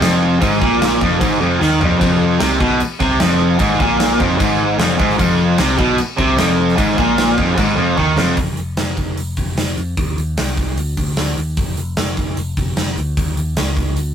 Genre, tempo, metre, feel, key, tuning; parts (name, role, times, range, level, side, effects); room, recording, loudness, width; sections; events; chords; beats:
hard rock; 150 BPM; 4/4; straight; A4 = 440 Hz
distorted electric guitar; riff; 0.0-8.4 s; F2 to Eb3; -17 LUFS; right 3 dB; overdrive
high-gain distorted guitar; riff; 0.0-8.4 s; F2 to Eb3; -23 LUFS; left 5 dB; distortion
overdriven electric guitar; riff; 0.0-8.4 s; F2 to Eb3; -18 LUFS; left 2 dB
picked electric bass; bass; 0.0-14.1 s; F1 to F2; -22 LUFS; left 1 dB
gated 80s drum kit; drums; 0.0-14.1 s; crash cymbal, hi-hat, kick drum, snare drum, toms; -20 LUFS; equal
moderate studio reverb, RT60 0.6 s; rough rehearsal-room recording, tube saturation; -14 LUFS; side -8 dB against mid
0.0-8.4 A section; 8.4-14.1 B section
drum fill 1.6-2.0, 8.0-8.4
0.0 F5; 8.4 N.C.; 10.0 Cm; 10.8 N.C.; 13.2 Dbsus2
0.01 | 0.41 0.81 1.21 1.61 | 2.00 2.40 2.80 3.20 | 3.60 4.00 4.40 4.79 | 5.19 5.59 5.99 6.39 | 6.78 7.18 7.58 7.98 | 8.38 8.78 9.17 9.57 | 9.97 10.37 10.77 11.17 | 11.57 11.97 12.37 12.76 | 13.16 13.56 13.96